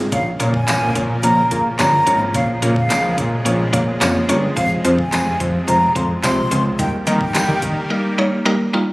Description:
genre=dance-pop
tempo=108 BPM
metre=4/4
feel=straight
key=Bb dorian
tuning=A4 = 440 Hz
part: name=mallet-like synth pluck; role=accompaniment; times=0.0-8.9 s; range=G3 to Db5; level=-20 LUFS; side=equal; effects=chorus, sidechain pumping
part: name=lush unison pad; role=sustained chords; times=0.0-8.9 s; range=C3 to Bb3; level=-25 LUFS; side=equal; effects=chorus, sidechain pumping
part: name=fat analog bass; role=bass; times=0.0-7.8 s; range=F1 to Eb3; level=-20 LUFS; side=equal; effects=sidechain pumping
part: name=breathy concert flute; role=melody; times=0.1-7.6 s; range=F5 to C6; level=-20 LUFS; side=equal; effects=sidechain pumping, digital delay
part: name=pop drum kit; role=drums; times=0.1-7.8 s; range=handclaps, hi-hat, kick drum, snare drum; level=-23 LUFS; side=equal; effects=none
part: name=tambourine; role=percussion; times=0.7-7.5 s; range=none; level=-31 LUFS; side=right 1 dB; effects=none
room=moderate lush hall reverb, RT60 1.9 s, digital ambience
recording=recorded on a phone in the room, club reverb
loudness=-15 LUFS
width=side -21 dB against mid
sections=0.1-8.9 A section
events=drums muted 7.9-8.9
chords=0.1 Bbm; 4.6 Fm; 6.8 Eb

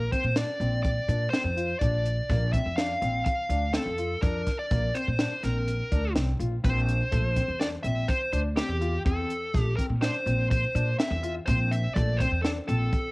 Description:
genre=progressive instrumental, band music in an uneven meter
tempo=124 BPM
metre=5/4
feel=straight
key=Bb lydian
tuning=A4 = 439 Hz
part: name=dark smooth lead guitar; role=melody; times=0.0-13.1 s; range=G4 to F5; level=-30 LUFS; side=equal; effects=overdrive, cassette tape
part: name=upright bass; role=bass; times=0.0-12.9 s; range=Bb1 to Bb2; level=-28 LUFS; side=equal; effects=none
part: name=warm grand piano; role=arpeggios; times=0.1-12.9 s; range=A3 to F4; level=-35 LUFS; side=left 4 dB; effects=cassette tape, tape echo
part: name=compact cocktail drum kit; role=drums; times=0.1-13.0 s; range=hi-hat, kick drum, snare drum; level=-29 LUFS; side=equal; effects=cassette tape
room=light reverb, studio reverb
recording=home recording on cassette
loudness=-24 LUFS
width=side -23 dB against mid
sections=0.0-13.1 A section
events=none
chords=0.0 Bbadd9; 6.6 Am/Bb (rootless)

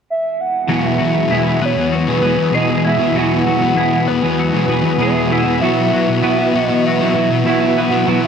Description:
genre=rock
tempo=98 BPM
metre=4/4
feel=straight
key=E major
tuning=A4 = 440 Hz
part: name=hollow clarinet-like synth lead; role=melody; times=0.1-8.3 s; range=B4 to F#5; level=-20 LUFS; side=right 2 dB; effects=chorus, digital delay
part: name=phased analog pad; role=sustained chords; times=0.7-8.3 s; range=E3 to B4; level=-24 LUFS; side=right 2 dB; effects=phaser, chorus
part: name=twelve-string electric guitar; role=arpeggios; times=0.7-8.3 s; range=F#3 to G#4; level=-22 LUFS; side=left 5 dB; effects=analog chorus, digital delay
part: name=overdriven semi-hollow guitar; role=riff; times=0.7-8.3 s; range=E2 to G#4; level=-19 LUFS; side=right 11 dB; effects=reverse reverb
part: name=thick fuzz guitar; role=riff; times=0.7-8.3 s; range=E2 to B3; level=-17 LUFS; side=left 6 dB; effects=distortion, wide subtle chorus
room=moderate lush hall reverb, RT60 2.4 s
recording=dark, warm production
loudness=-13 LUFS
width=side -7 dB against mid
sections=0.7-8.3 A section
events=none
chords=0.0 N.C.; 0.7 Eadd9; 5.6 Bsus4

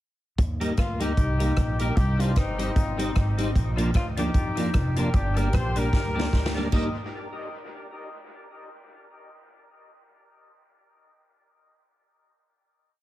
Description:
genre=ska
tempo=151 BPM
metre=4/4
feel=swing 57% on 8ths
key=Eb major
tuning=A4 = 438 Hz
part: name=upright bass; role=bass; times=0.4-6.9 s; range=F1 to F2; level=-27 LUFS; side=equal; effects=none
part: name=swinging big-band drum kit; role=drums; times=0.4-6.8 s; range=crash cymbal, hi-hat, kick drum, rim click, snare drum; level=-26 LUFS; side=equal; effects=none
part: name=clean electric guitar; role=accompaniment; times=0.6-6.9 s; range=F3 to Eb4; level=-31 LUFS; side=right 1 dB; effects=ensemble chorus
part: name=percussive tonewheel organ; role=stabs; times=0.6-6.9 s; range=D4 to Eb5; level=-36 LUFS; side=left 2 dB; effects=overdrive, chorus vibrato, slow rotary speaker, dub echo
part: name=warm horn section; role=melody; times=0.8-6.9 s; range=Bb3 to Eb5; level=-32 LUFS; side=left 2 dB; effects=dub echo
room=studio ambience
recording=heavily compressed radio sound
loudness=-22 LUFS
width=side -15 dB against mid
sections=0.4-6.7 A section; 6.7-8.3 final chord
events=drum fill 5.9-6.7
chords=0.4 Eb; 2.0 Cm; 3.6 Bb; 5.1 Gm; 6.7 Eb

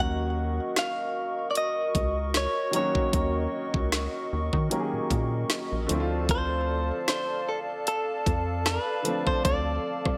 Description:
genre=contemporary R&B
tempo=76 BPM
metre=4/4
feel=swing 54% on 16ths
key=unclear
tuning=A4 = 440 Hz
part: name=direct-recorded clean electric guitar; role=melody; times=0.0-10.2 s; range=A4 to Gb5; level=-32 LUFS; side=equal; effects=subtle chorus
part: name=warm grand piano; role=accompaniment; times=0.0-10.2 s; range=D3 to Ab4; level=-36 LUFS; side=equal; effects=none
part: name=hollow soft pad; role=sustained chords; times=0.0-10.2 s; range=Gb4 to Db6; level=-36 LUFS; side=equal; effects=chorus
part: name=rubbery square bass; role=bass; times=0.0-10.2 s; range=Bb1 to Eb3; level=-32 LUFS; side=equal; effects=none
part: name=smooth R&B drum kit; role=drums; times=0.8-10.2 s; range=hi-hat, kick drum, rim click, snare drum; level=-31 LUFS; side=equal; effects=none
room=light reverb, digital ambience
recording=none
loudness=-27 LUFS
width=mono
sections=0.0-10.2 A section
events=none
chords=0.0 Ebm7; 5.9 Dm7

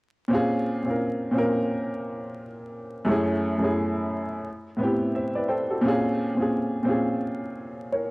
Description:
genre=hip hop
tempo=87 BPM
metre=4/4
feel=swing 57% on 16ths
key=Bb minor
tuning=A4 = 440 Hz
part: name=warm upright piano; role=accompaniment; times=0.3-8.1 s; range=Gb2 to G5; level=-24 LUFS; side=equal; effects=none
room=wet spring reverb, RT60 2.2 s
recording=home recording on cassette, vinyl crackle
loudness=-23 LUFS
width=side -24 dB against mid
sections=0.3-8.1 A section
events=upright piano fill 4.8-5.8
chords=0.3 Bbm9; 3.1 Gbm9; 4.4 Am9; 5.8 Bbm9

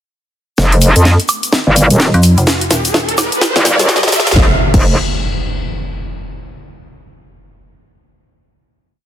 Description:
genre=bass house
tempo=127 BPM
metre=4/4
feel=swing 61% on 16ths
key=unclear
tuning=A4 = 443 Hz
part: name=metallic wobble bass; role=bass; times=0.6-5.0 s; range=Eb1 to F2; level=-10 LUFS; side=equal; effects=chorus, overdrive, sidechain pumping
part: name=electronic kick drum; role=drums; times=0.6-4.8 s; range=none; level=-14 LUFS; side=equal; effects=high-pass filter on kick
part: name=house drum kit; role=drums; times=0.6-4.8 s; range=crash cymbal, hi-hat, snare drum, woodblock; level=-15 LUFS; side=equal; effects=none
part: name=tube shaker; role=percussion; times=0.6-4.3 s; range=none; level=-23 LUFS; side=left 3 dB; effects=none
part: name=riser and impact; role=sound effects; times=1.9-6.2 s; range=none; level=-19 LUFS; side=equal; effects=none
part: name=metallic FM bass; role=bass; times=2.1-4.3 s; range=Eb1 to F2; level=-13 LUFS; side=equal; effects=tube saturation, sidechain pumping
room=light reverb, digital ambience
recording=dense, heavily limited modern master, high-pass filter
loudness=-10 LUFS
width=side -11 dB against mid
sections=0.6-4.4 build; 4.4-6.2 final note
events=build-up 0.6-4.4; drum fill 0.6-4.4; filter sweep 0.6-4.4; riser 1.9-4.4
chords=0.6 Ebadd9; 4.4 N.C.

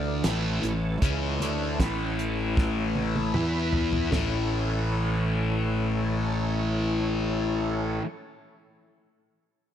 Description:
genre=psychedelic rock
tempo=77 BPM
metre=4/4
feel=straight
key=A major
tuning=A4 = 440 Hz
part: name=tonewheel organ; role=sustained chords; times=0.0-8.0 s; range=D3 to A5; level=-36 LUFS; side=right 2 dB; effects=overdrive, chorus vibrato, slow rotary speaker
part: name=fuzz guitar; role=riff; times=0.0-8.1 s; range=A2 to E4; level=-27 LUFS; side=left 2 dB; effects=distortion, phaser
part: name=fuzz fingered electric bass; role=bass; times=0.0-8.0 s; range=A1 to E2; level=-30 LUFS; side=equal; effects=overdrive
part: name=damped 70s drum kit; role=drums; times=0.2-4.3 s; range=hi-hat, kick drum, snare drum, toms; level=-27 LUFS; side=equal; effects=none
room=light reverb, studio ambience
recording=none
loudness=-24 LUFS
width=side -10 dB against mid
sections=0.0-4.1 A section; 4.1-7.2 B section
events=drum fill 2.6-4.1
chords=0.3 A; 3.4 E5; 4.1 A

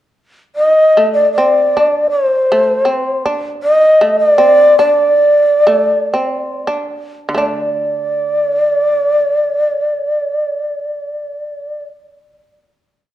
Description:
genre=japanese traditional, Japanese chamber music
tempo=46-81 BPM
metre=2/4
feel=rubato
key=unclear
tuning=A4 = 440 Hz
part: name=breathy long shakuhachi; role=melody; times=0.6-11.8 s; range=C5 to Eb5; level=-11 LUFS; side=equal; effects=none
part: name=shamisen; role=second line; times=1.0-11.9 s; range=D3 to D4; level=-19 LUFS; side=right 1 dB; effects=none
room=moderate recital hall reverb, RT60 1.5 s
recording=dark, warm production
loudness=-11 LUFS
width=side -12 dB against mid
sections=0.6-7.3 A section; 7.3-12.1 final chord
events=slowing down 3.6-7.3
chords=none

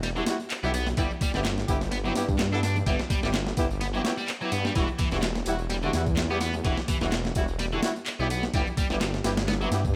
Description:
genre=breakbeat, breaks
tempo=127 BPM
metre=4/4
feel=swing 55% on 16ths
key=E minor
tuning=A4 = 440 Hz
part: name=distorted electric guitar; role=riff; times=0.0-9.7 s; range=D3 to D4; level=-35 LUFS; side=equal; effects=overdrive, digital delay
part: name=detuned saw bass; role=bass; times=0.0-10.0 s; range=E1 to G2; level=-32 LUFS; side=equal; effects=none
part: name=breakbeat sampler-style drum kit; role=drums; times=0.0-9.9 s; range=kick drum, ride cymbal, snare drum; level=-31 LUFS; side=equal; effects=studio reverb
part: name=electronic tambourine and handclaps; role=drums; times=0.0-9.9 s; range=none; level=-40 LUFS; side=equal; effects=studio reverb
part: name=congas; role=percussion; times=0.0-9.9 s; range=none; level=-42 LUFS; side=equal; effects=none
part: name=warm horn section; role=stabs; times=0.2-9.8 s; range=G3 to A4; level=-35 LUFS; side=equal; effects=digital delay
room=little or no reverb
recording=none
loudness=-27 LUFS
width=mono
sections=0.0-10.0 A section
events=none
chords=0.0 Emadd9; 1.0 G6; 4.8 Emadd9; 8.5 G6

